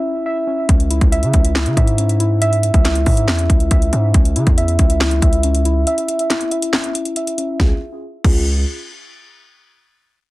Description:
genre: hip hop, trap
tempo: 139 BPM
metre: 4/4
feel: half-time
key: C# minor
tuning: A4 = 440 Hz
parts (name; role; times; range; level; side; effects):
- muted felt-like synth keys; arpeggios; 0.0-8.4 s; C#4 to E5; -20 LUFS; equal; chorus, low-pass filter, digital delay
- distorted 808-style bass; bass; 0.7-8.6 s; C#2 to C#3; -16 LUFS; equal; distortion
- trap drum kit; drums; 0.7-8.3 s; crash cymbal, handclaps, hi-hat, kick drum, snare drum; -16 LUFS; equal; none
room: little or no reverb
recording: dense, heavily limited modern master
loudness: -14 LUFS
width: side -19 dB against mid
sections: 0.7-7.6 A section; 7.6-9.3 B section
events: break 0.0-0.7, 5.9-7.6; filter sweep on synth keys 0.7-7.6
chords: 0.0 C#m; 7.6 C#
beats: 0.26 | 0.69 1.12 1.55 1.99 | 2.42 2.85 3.28 3.71 | 4.14 4.58 5.01 5.44 | 5.87 6.30 6.73 7.17 | 7.60 8.03 8.46

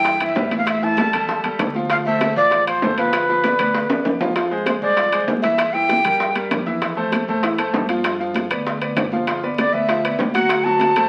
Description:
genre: latin, salsa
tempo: 195 BPM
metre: 4/4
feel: straight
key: unclear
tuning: A4 = 441 Hz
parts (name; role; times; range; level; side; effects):
- breathy bright jazz flute; melody; 0.0-6.4, 9.6-11.1 s; B4 to A5; -21 LUFS; equal; none
- clear grand piano; accompaniment; 0.0-11.1 s; E3 to F#5; -25 LUFS; equal; none
- upright bass; bass; 0.0-11.1 s; G1 to A2; -32 LUFS; equal; none
- bongos; percussion; 0.0-11.0 s; none; -29 LUFS; equal; none
- congas; percussion; 0.1-11.1 s; none; -31 LUFS; equal; none
- timbales; percussion; 0.1-11.1 s; none; -28 LUFS; equal; none
room: wet studio reverb, RT60 0.9 s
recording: very old 78 rpm record, vinyl crackle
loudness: -19 LUFS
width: mono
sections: 0.0-4.4 A section; 4.4-11.1 B section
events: drum fill 3.9-4.4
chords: 0.0 Cmaj7 (rootless); 0.7 A5; 1.9 Dm7; 3.1 G7; 4.4 Fm6; 5.6 C7; 6.8 Fmaj7; 8.0 G7; 10.5 D7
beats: 0.05 0.36 | 0.67 0.97 1.28 1.59 | 1.90 2.21 2.51 2.82 | 3.13 3.44 3.74 4.05 | 4.36 4.67 4.97 5.28 | 5.59 5.89 6.20 6.51 | 6.82 7.12 7.43 7.74 | 8.04 8.35 8.66 8.96 | 9.27 9.58 9.89 10.19 | 10.50 10.81

